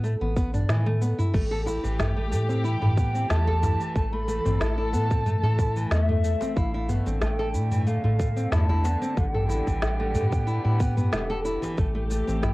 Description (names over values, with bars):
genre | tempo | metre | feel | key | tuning
organic downtempo | 92 BPM | 4/4 | swing 54% on 16ths | A minor | A4 = 440 Hz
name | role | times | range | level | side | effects
nylon-string guitar | arpeggios | 0.0-12.5 s | E3 to A4 | -30 LUFS | equal | cassette tape, analog delay
round analog bass | bass | 0.0-12.5 s | E1 to A2 | -25 LUFS | equal | none
organic electronic drum kit | drums | 0.0-12.5 s | crash cymbal, shaker, snare drum, toms | -29 LUFS | equal | cassette tape
electronic kick drum | drums | 0.4-11.9 s | none | -25 LUFS | equal | cassette tape
warm chamber string section | sustained chords | 1.3-12.5 s | D3 to A4 | -33 LUFS | left 1 dB | sidechain pumping, cassette tape
djembe | percussion | 1.7-12.5 s | none | -35 LUFS | left 1 dB | none
reedy bansuri | melody | 2.6-12.5 s | E5 to B5 | -32 LUFS | equal | cassette tape, analog delay
room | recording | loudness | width
light reverb | home recording on cassette | -22 LUFS | side -20 dB against mid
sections
0.0-12.5 A section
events
drum fill 0.7-1.3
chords
0.0 Asus2; 1.3 Am7; 6.6 Dm7/A; 9.2 G/A; 11.8 Am7